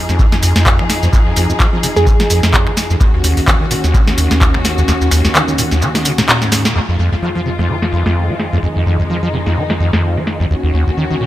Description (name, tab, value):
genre	acid house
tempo	128 BPM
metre	4/4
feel	swing 56% on 16ths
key	F phrygian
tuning	A4 = 440 Hz
part	warm studio string section	sustained chords	0.0-11.3 s	Eb2 to Ab4	-19 LUFS	left 1 dB	sidechain pumping, low-pass filter
part	acid bass, saw	riff	0.1-11.3 s	Eb2 to Ab3	-16 LUFS	equal	overdrive, lush chorus, analog delay
part	booming analog drum machine	drums	0.1-10.4 s	finger snaps, handclaps, hi-hat, shaker, snare drum	-17 LUFS	equal	low-pass filter on perc, low-pass filter on hats, low-pass filter on snare, dub echo
part	electronic kick drum	drums	0.2-4.5 s	none	-13 LUFS	equal	none
part	glassy wavetable pluck	melody	2.0-2.6 s	Ab4	-19 LUFS	right 3 dB	chorus, dub echo
room	light reverb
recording	echo-heavy mix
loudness	-11 LUFS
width	side -14 dB against mid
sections	0.0-6.8 A section; 6.8-11.3 B section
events	kick drops out 4.9-6.8; drum fill 6.4-6.8; band accent 6.6; filter sweep on string section 6.8-11.3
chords	0.0 Fm7; 3.0 Ebm7; 6.8 Fm7; 10.5 Ebm7